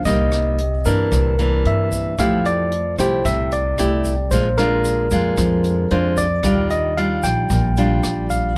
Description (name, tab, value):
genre	bossa nova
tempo	113 BPM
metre	4/4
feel	straight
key	unclear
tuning	A4 = 440 Hz
part	tine electric piano	melody	0.0-8.6 s	Bb4 to G5	-24 LUFS	equal	none
part	nylon-string guitar	accompaniment	0.0-8.5 s	Bb2 to G4	-24 LUFS	equal	none
part	upright bass	bass	0.1-8.6 s	Bb1 to G2	-23 LUFS	equal	none
part	jazz brush drum kit	drums	0.1-8.4 s	hi-hat, kick drum, rim click	-30 LUFS	equal	none
part	tube shaker	percussion	0.1-8.6 s	none	-38 LUFS	equal	none
room	little or no reverb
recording	close, detailed microphones, lossy compression artefacts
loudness	-19 LUFS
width	mono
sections	0.0-2.2 A section; 2.2-8.6 B section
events	none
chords	0.1 Cm7; 1.1 C9; 2.2 Fmaj9; 4.3 Bb7; 6.4 Ebmaj9